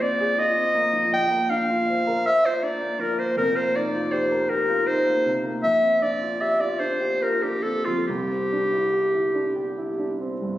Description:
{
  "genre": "classical, impressionist duo for clarinet and grand piano",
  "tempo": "45-54 BPM (dotted quarters)",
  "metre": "6/8",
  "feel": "rubato",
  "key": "unclear",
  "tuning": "A4 = 437 Hz",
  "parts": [
    { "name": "clear clarinet", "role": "melody", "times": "0.0-10.2 s", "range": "F4 to G5", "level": "-22 LUFS", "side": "equal", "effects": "none" },
    { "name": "dark baby grand piano", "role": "accompaniment", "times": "0.0-10.6 s", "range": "F1 to C5", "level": "-27 LUFS", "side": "right 1 dB", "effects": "none" }
  ],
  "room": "moderate scoring stage reverb, RT60 1.6 s",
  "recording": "recorded on a phone in the room, studio reverb, compression",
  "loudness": "-20 LUFS",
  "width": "side -14 dB against mid",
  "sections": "0.0-10.6 A section",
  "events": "none",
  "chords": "0.0 Bb9sus4; 1.1 Bbadd9; 3.4 F9sus4; 5.6 Bb69; 8.1 Cadd9",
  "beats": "0.02 | 1.13 2.26 | 3.38 4.50 | 5.64 6.81 | 8.07 9.34"
}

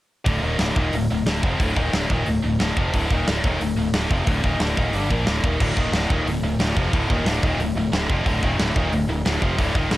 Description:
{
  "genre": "heavy metal",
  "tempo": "180 BPM",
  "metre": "4/4",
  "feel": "straight",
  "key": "D phrygian",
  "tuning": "A4 = 440 Hz",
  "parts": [
    { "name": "tight distorted guitar", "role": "riff", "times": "0.2-10.0 s", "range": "D2 to Bb3", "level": "-24 LUFS", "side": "left 3 dB", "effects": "distortion, cassette tape" },
    { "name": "scooped high-gain guitar", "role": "riff", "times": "0.3-10.0 s", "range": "D2 to Bb3", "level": "-28 LUFS", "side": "right 6 dB", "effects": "distortion, cassette tape" },
    { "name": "growling fingered electric bass", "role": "bass", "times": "0.3-10.0 s", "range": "D1 to Bb1", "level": "-25 LUFS", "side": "equal", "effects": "overdrive" },
    { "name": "tight metal drum kit", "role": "drums", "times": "0.3-10.0 s", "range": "crash cymbal, hi-hat, kick drum, snare drum", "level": "-24 LUFS", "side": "equal", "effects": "cassette tape" },
    { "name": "distorted electric guitar", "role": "riff", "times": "5.6-10.0 s", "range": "D2 to F3", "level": "-29 LUFS", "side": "right 2 dB", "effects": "overdrive, cassette tape" }
  ],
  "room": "light reverb",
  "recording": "home recording on cassette",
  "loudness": "-19 LUFS",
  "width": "side -16 dB against mid",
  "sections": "0.3-10.0 A section",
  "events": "none",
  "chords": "0.3 Dm",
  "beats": "| 0.27 0.60 0.93 1.27 | 1.60 1.94 2.27 2.60 | 2.94 3.27 3.60 3.94 | 4.27 4.61 4.94 5.27 | 5.60 5.94 6.27 6.60 | 6.93 7.27 7.60 7.93 | 8.26 8.60 8.93 9.26 | 9.59 9.92"
}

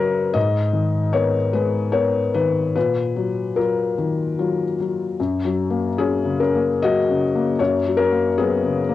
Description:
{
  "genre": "neoclassical minimalist piano",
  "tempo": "75 BPM",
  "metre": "3/4",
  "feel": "rubato",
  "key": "unclear",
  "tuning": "A4 = 445 Hz",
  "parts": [
    { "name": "felt-muted upright piano", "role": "solo", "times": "0.0-8.9 s", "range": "F#2 to E#5", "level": "-18 LUFS", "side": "left 3 dB", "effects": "none" }
  ],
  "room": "light reverb",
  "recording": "home recording on cassette",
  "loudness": "-18 LUFS",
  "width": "side -13 dB against mid",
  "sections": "0.0-5.2 A section; 5.2-8.9 B section",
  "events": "none",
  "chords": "0.3 G#madd9; 2.8 D#madd9/A#; 5.2 F#",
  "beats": "| 0.35 1.13 1.93 | 2.75 3.57 4.38 | 5.18 5.97 6.80 | 7.59 8.36"
}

